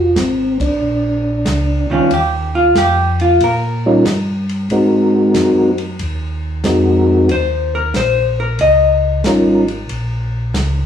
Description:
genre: soul jazz organ trio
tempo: 92 BPM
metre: 4/4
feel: swing 67% on 8ths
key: unclear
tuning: A4 = 439 Hz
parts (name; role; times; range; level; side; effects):
- percussive tonewheel organ; melody; 0.0-9.7 s; G3 to Bb4; -13 LUFS; equal; slow rotary speaker, chorus vibrato
- mellow tonewheel organ; bass; 0.0-10.9 s; F1 to Bb2; -19 LUFS; equal; slow rotary speaker
- warm soul drum kit; drums; 0.2-10.7 s; hi-hat, kick drum, ride cymbal, snare drum; -25 LUFS; equal; none
- vintage hollow-body jazz guitar; accompaniment; 1.9-9.7 s; Eb3 to Eb5; -14 LUFS; left 1 dB; none
room: moderate large studio reverb, RT60 0.9 s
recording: band playing live in one room, studio ambience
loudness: -12 LUFS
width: side -8 dB against mid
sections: 0.0-2.1 A section; 2.1-10.9 B section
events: band accent 0.5-0.8; hollow-body jazz guitar solo 2.1-10.9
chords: 0.0 Fm; 0.8 Bb; 2.1 Ebadd9; 4.7 Ab9; 7.3 Eb7(no3); 9.9 Bbm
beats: 0.17 0.82 1.47 | 2.12 2.76 3.41 4.06 | 4.71 5.36 6.01 6.66 | 7.31 7.95 8.60 9.25 | 9.90 10.55

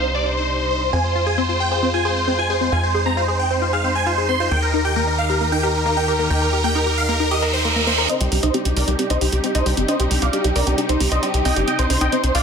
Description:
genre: uplifting trance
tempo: 134 BPM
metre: 4/4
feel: straight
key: C minor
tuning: A4 = 438 Hz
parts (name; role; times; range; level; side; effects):
- big supersaw lead; melody; 0.0-12.4 s; Eb4 to C6; -20 LUFS; right 1 dB; phaser, low-pass filter, digital delay
- warm studio string section; sustained chords; 0.0-12.4 s; C3 to Bb4; -27 LUFS; left 1 dB; low-pass filter
- tight sequencer bass; bass; 0.0-12.4 s; G1 to F2; -22 LUFS; equal; none
- tight sequenced synth; arpeggios; 0.9-12.3 s; Bb3 to Bb4; -25 LUFS; left 2 dB; chorus, phaser, digital delay
- reverse cymbal; sound effects; 7.4-8.1 s; none; -22 LUFS; right 5 dB; none
- wide unison pluck; second line; 8.1-12.4 s; G4 to G5; -28 LUFS; right 1 dB; digital delay
- electronic hi-hat; drums; 8.1-12.4 s; none; -26 LUFS; right 3 dB; high-pass filter on hats, high-pass filter on room
room: light reverb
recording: none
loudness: -17 LUFS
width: side -6 dB against mid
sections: 0.0-8.1 A section; 8.1-12.4 B section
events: reverse cymbal 7.4-8.1; build-up 8.1-12.4; filter sweep on supersaw synth 8.1-12.4; filter sweep on synth arpeggio sound 8.1-12.4; filter sweep on synth pluck 8.1-12.4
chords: 0.0 Cmadd9; 0.9 Fm; 4.5 Eb; 8.1 Cmadd9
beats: 0.04 0.48 | 0.93 1.38 1.83 2.27 | 2.72 3.17 3.62 4.06 | 4.51 4.96 5.41 5.86 | 6.30 6.75 7.20 7.65 | 8.09 8.54 8.99 9.44 | 9.88 10.33 10.78 11.23 | 11.68 12.12

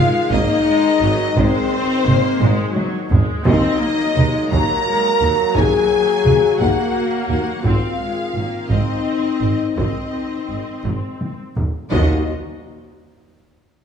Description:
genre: cinematic, epic orchestral film score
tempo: 57 BPM (dotted quarters)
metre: 6/8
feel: straight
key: Eb dorian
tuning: A4 = 441 Hz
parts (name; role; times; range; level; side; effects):
- warm symphonic violin section; melody; 0.0-12.3 s; C5 to Bb5; -27 LUFS; left 4 dB; none
- warm symphonic violin section; second line; 0.0-12.3 s; C5 to Bb5; -26 LUFS; left 3 dB; none
- rich symphonic viola section; accompaniment; 0.0-12.3 s; Gb3 to Gb4; -25 LUFS; right 1 dB; none
- dark trombone section; sustained chords; 0.0-12.2 s; Eb3 to C4; -28 LUFS; right 1 dB; none
- mellow French horn section; sustained chords; 0.0-12.2 s; C4 to Bb4; -20 LUFS; left 4 dB; none
- clear studio cello section; bass; 0.0-12.3 s; Eb2 to Ab2; -25 LUFS; right 2 dB; none
- warm studio double bass section; bass; 0.0-12.3 s; Ab1 to Eb2; -23 LUFS; right 3 dB; none
- warm tuba; bass; 0.0-12.2 s; Ab1 to Eb2; -28 LUFS; right 4 dB; none
- taiko ensemble; drums; 0.3-13.3 s; none; -21 LUFS; equal; none
- timpani; percussion; 3.5-4.5, 11.9-12.2 s; Eb3; -28 LUFS; left 2 dB; none
room: wet scoring stage reverb, RT60 1.8 s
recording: small room ambience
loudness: -15 LUFS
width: side -7 dB against mid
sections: 0.0-11.9 A section; 11.9-13.8 B section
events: drum fill 2.4-3.5, 10.8-11.9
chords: 0.0 Ab; 3.5 Ebm; 7.6 Ab; 11.9 Ebmadd9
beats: 0.33 | 1.37 2.42 | 3.46 4.51 | 5.55 6.60 | 7.64 8.70 | 9.77 10.85 | 11.92 12.97

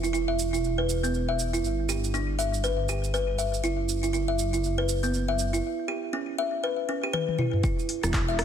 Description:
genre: afro house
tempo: 120 BPM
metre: 4/4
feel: swing 59% on 16ths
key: unclear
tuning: A4 = 443 Hz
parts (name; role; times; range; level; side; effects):
- kalimba; arpeggios; 0.0-8.4 s; B3 to E5; -27 LUFS; equal; sidechain pumping, low-pass filter, ping-pong delay
- dark detuned saw bass; bass; 0.0-8.4 s; E1 to G1; -29 LUFS; equal; tube saturation, sidechain pumping
- afro-pop drum kit; drums; 0.0-8.4 s; handclaps, hi-hat, rim click, shaker, toms; -32 LUFS; right 1 dB; none
- electronic kick drum; drums; 7.6-8.3 s; none; -27 LUFS; equal; none
room: light reverb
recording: none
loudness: -25 LUFS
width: side -8 dB against mid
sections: 0.0-7.6 A section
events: drum fill 7.1-7.6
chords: 0.0 E5; 1.6 G; 3.6 F#7(no3); 5.6 C#m7b5; 7.6 N.C.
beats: 0.14 0.64 1.14 | 1.64 2.14 2.64 3.14 | 3.64 4.14 4.64 5.14 | 5.64 6.14 6.64 7.14 | 7.64 8.14

